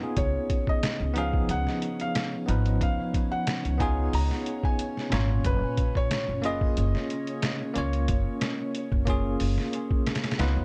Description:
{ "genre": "trip hop", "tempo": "91 BPM", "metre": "4/4", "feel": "swing 53% on 16ths", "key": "unclear", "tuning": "A4 = 440 Hz", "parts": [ { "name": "bell-like tine electric piano", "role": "accompaniment", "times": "0.0-10.6 s", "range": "A#2 to C#5", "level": "-33 LUFS", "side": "equal", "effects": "tremolo, tape echo" }, { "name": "string machine, cellos", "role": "sustained chords", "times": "0.0-10.6 s", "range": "C#4 to C#5", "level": "-41 LUFS", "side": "equal", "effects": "ensemble chorus, vintage 12-bit sampler grit" }, { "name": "felt-muted upright piano", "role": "melody", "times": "0.2-10.0 s", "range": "B4 to A#5", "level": "-36 LUFS", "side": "equal", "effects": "tape echo" }, { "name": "upright bass", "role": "bass", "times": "0.2-10.6 s", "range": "F#1 to C#2", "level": "-30 LUFS", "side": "equal", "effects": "none" }, { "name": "trip hop sampler-style drum kit", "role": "drums", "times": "0.2-10.6 s", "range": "hi-hat, kick drum, snare drum", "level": "-31 LUFS", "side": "equal", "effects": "vintage 12-bit sampler grit, small room reverb" } ], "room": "little or no reverb", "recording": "echo-heavy mix", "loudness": "-27 LUFS", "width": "mono", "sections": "0.0-10.6 A section", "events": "none", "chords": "0.2 C#7; 5.4 F#maj7" }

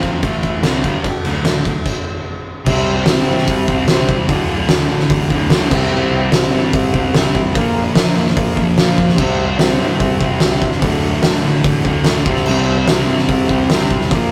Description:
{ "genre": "garage rock duo or trio", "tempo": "147 BPM", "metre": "4/4", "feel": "straight", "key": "unclear", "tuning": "A4 = 439 Hz", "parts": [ { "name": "overdriven combo organ", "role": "sustained chords", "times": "0.0-14.3 s", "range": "E4 to F5", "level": "-26 LUFS", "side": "equal", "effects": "spring reverb" }, { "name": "fuzz guitar", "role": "riff", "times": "0.0-14.3 s", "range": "D2 to C4", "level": "-19 LUFS", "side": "equal", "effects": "distortion" }, { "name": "hollow-body short-scale picked electric bass", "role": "bass", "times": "0.0-14.3 s", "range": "D1 to C3", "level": "-27 LUFS", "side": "equal", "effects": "none" }, { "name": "oversized low-tuned drum kit", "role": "drums", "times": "0.0-14.2 s", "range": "crash cymbal, hi-hat, kick drum, ride cymbal, snare drum", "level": "-19 LUFS", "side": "equal", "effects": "none" } ], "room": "moderate studio reverb, RT60 0.6 s", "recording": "rough rehearsal-room recording, tube saturation", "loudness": "-15 LUFS", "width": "mono", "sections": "0.0-2.7 A section; 2.7-14.3 B section", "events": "stop 1.9-2.7", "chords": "0.2 A5; 0.6 D; 1.9 N.C.; 2.7 C; 4.3 D; 5.7 C; 7.5 Bb; 9.2 C; 10.8 D; 12.3 C" }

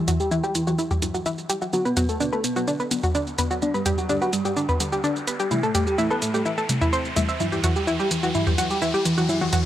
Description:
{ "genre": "melodic techno", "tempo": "127 BPM", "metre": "4/4", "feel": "straight", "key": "E minor", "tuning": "A4 = 440 Hz", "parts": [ { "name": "wide unison lead", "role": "melody", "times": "0.0-9.6 s", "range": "E3 to B4", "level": "-26 LUFS", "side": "equal", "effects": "tape echo" }, { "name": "dark detuned synth bell", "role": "second line", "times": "0.0-9.6 s", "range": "E4 to B5", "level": "-35 LUFS", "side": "equal", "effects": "chorus, vintage 12-bit sampler grit, low-pass filter, analog delay" }, { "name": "filtered dub chord stab", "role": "stabs", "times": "0.0-9.7 s", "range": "F#2 to B3", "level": "-30 LUFS", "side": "left 2 dB", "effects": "phaser, analog delay" }, { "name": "riser", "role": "sound effects", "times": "1.4-9.7 s", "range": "none", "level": "-34 LUFS", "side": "equal", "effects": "none" }, { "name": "analog pluck", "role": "arpeggios", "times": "0.1-9.6 s", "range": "D4 to E5", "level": "-25 LUFS", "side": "equal", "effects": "chorus, analog delay" }, { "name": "techno drum kit", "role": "drums", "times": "0.1-9.6 s", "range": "hi-hat, shaker, toms", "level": "-26 LUFS", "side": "equal", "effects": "overdrive" } ], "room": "light reverb", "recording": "dry, gritty hardware recording", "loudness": "-21 LUFS", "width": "side -12 dB against mid", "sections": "0.0-9.7 A section", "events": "build-up 0.0-9.7; filter sweep on synth arpeggio sound 0.0-9.7; filter sweep on analog synth lead 0.0-9.7; filter sweep on synth bell 0.0-9.7; riser 1.4-9.7", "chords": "0.0 Emadd9; 1.7 Bm; 3.6 G; 5.5 Am7; 7.4 Emadd9" }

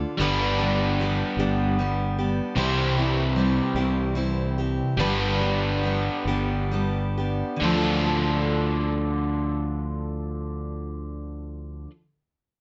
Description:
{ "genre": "rock", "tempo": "43-51 BPM (dotted quarters)", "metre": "6/8", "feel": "straight", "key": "D dorian", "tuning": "A4 = 438 Hz", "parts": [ { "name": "picked steel-string acoustic guitar", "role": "accompaniment", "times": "0.0-12.0 s", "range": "G2 to A4", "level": "-31 LUFS", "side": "equal", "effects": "none" }, { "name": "crunchy overdriven guitar", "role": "riff", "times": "0.0-11.9 s", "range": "C3 to C5", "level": "-29 LUFS", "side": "equal", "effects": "none" }, { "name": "fingered electric bass", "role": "bass", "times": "0.0-11.9 s", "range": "G1 to D2", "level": "-30 LUFS", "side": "equal", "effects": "none" } ], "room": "light reverb", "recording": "nothing above 7.8 kHz", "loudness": "-25 LUFS", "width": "mono", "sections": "0.0-7.6 A section; 7.6-10.4 B section", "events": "slowing down 2.6-7.6", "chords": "0.2 G; 2.6 C; 5.0 G; 7.6 Dm" }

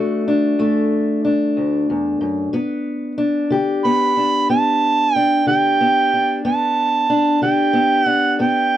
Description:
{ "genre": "acoustic country blues, solo or duo", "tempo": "62 BPM (dotted quarters)", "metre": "12/8", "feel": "straight", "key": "unclear", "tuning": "A4 = 440 Hz", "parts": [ { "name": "fingerpicked steel-string acoustic guitar", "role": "accompaniment", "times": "0.0-8.8 s", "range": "D2 to G4", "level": "-18 LUFS", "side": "left 2 dB", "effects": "none" }, { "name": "overdriven harmonica", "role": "melody", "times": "3.8-8.8 s", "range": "G5 to B5", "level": "-16 LUFS", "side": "right 4 dB", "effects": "none" } ], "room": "light reverb", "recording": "dry, close 1970s-style studio recording", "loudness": "-15 LUFS", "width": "side -12 dB against mid", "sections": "0.0-8.8 A section", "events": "none", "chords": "0.0 D; 2.5 G" }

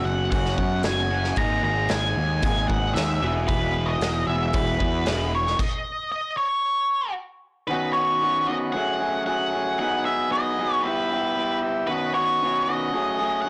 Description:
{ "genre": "indie rock", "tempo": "114 BPM", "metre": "4/4", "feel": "straight", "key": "B mixolydian from 7.7 s", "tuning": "A4 = 440 Hz", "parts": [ { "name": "octave-fuzz lead guitar", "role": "melody", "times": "0.0-13.5 s", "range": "B4 to A#5", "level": "-28 LUFS", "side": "equal", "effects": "distortion, slapback echo" }, { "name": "electric guitar through a small old amp", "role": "riff", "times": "0.0-13.5 s", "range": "D#3 to G#4", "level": "-29 LUFS", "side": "equal", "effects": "vibrato effect" }, { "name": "overdriven electric guitar", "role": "riff", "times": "0.0-5.3 s", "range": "E3 to G#4", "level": "-34 LUFS", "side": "equal", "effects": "ensemble chorus" }, { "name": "fuzz picked electric bass", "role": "bass", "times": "0.0-5.5 s", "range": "E1 to F#2", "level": "-28 LUFS", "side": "equal", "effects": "overdrive" }, { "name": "big rock drum kit", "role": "drums", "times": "0.3-5.7 s", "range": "crash cymbal, hi-hat, kick drum, snare drum", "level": "-30 LUFS", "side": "equal", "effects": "none" }, { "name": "overdriven combo organ", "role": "sustained chords", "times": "7.7-13.5 s", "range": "G3 to E6", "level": "-35 LUFS", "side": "equal", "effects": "none" } ], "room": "light reverb", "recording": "blown-out, overdriven recording, overdrive", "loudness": "-24 LUFS", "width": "mono", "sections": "0.0-7.7 A section; 7.7-13.5 B section", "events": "stop 5.6-7.7", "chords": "0.0 F#sus4; 1.4 G#sus2; 3.2 Eadd9; 5.6 N.C.; 7.7 Badd9; 8.7 F#madd9; 9.8 G#m7; 10.8 Em/G; 11.9 Badd9; 12.9 F#madd9" }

